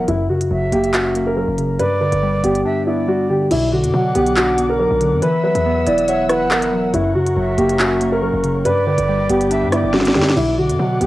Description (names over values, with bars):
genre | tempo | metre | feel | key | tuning
hip hop, drill | 140 BPM | 4/4 | half-time | B harmonic minor | A4 = 438 Hz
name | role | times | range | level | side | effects
dark grand piano | melody | 0.0-11.1 s | E4 to D5 | -18 LUFS | equal | low-pass filter, cassette tape, tape echo
breathy concert flute | second line | 0.0-11.1 s | D5 to F#5 | -24 LUFS | right 3 dB | cassette tape, tape echo
warbly lo-fi synth keys | accompaniment | 0.0-11.1 s | F#2 to E5 | -20 LUFS | equal | chorus, low-pass filter, cassette tape
hard-hitting 808-style bass | bass | 0.0-11.1 s | E1 to B2 | -25 LUFS | equal | transformer saturation
drill drum kit | drums | 0.1-11.1 s | crash cymbal, handclaps, hi-hat, rim click, snare drum | -21 LUFS | equal | cassette tape
muted chamber string section | sustained chords | 3.5-11.1 s | B3 to E6 | -30 LUFS | left 2 dB | cassette tape
room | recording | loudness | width
light reverb, studio reverb | home recording on cassette | -14 LUFS | side -16 dB against mid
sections
0.0-3.5 A section; 3.5-11.1 B section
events
drum fill 9.9-10.4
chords
0.1 F#; 1.8 G; 3.5 Bm; 5.2 Esus2; 6.9 F#; 8.7 G; 10.4 Bm